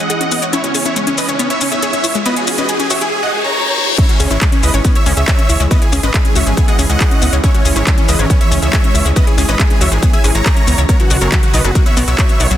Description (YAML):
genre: uplifting trance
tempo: 139 BPM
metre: 4/4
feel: straight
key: C# dorian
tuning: A4 = 440 Hz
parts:
  - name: big supersaw lead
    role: melody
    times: 0.0-12.5 s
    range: C#4 to A#5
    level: -18 LUFS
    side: right 1 dB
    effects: sidechain pumping, low-pass filter, dub echo
  - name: analog string pad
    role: sustained chords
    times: 0.0-12.6 s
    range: C#3 to F#4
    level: -23 LUFS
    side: equal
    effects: ensemble chorus, sidechain pumping
  - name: analog pluck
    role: arpeggios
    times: 0.0-12.5 s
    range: F#3 to C#5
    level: -22 LUFS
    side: left 4 dB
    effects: chorus, sidechain pumping, dub echo
  - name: riser and reverse cymbal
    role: sound effects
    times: 0.4-4.0 s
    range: none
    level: -21 LUFS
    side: left 2 dB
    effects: none
  - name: techno drum kit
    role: drums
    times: 0.1-12.6 s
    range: crash cymbal, handclaps, hi-hat, shaker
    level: -20 LUFS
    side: left 1 dB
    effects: none
  - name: electronic kick drum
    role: drums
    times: 4.0-12.3 s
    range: none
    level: -13 LUFS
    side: equal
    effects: none
  - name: gritty driven synth bass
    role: bass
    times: 4.2-12.6 s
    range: F#1 to C#2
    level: -15 LUFS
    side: equal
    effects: sidechain pumping
room: light reverb, digital ambience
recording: dense, heavily limited modern master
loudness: -11 LUFS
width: side -12 dB against mid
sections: 0.0-4.0 A section; 4.0-12.6 B section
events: build-up 0.0-4.0; riser 0.4-3.1; filter sweep on synth arpeggio sound 0.0-4.0; reverse cymbal 3.1-4.0; drop 4.0-12.6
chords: 0.0 C#madd9; 10.9 Bsus2